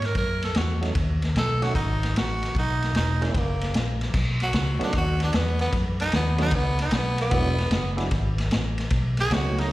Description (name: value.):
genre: electric blues shuffle.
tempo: 151 BPM.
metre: 4/4.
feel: swing 67% on 8ths.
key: B mixolydian.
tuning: A4 = 440 Hz.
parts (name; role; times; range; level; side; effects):
growling tenor saxophone; melody; 0.0-9.7 s; A#3 to A#4; -28 LUFS; right 1 dB; slapback echo, digital delay.
vintage muted fingered electric bass; bass; 0.0-9.7 s; E1 to G#2; -25 LUFS; equal; none.
vintage drum kit; drums; 0.0-9.6 s; crash cymbal, kick drum, ride cymbal, snare drum; -27 LUFS; equal; slapback echo.
percussive tonewheel organ; accompaniment; 0.8-9.7 s; F#3 to E4; -31 LUFS; right 3 dB; overdrive, chorus vibrato, slow rotary speaker, slapback echo.
room: little or no reverb.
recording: live gig heard through the venue's PA, recital hall reverb.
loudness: -22 LUFS.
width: side -17 dB against mid.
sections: 0.0-4.1 A section; 4.1-9.7 B section.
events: tenor saxophone solo 4.1-9.7.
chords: 0.0 F#7; 1.0 B7; 3.3 F#; 4.1 B7; 7.3 E7; 8.9 B7.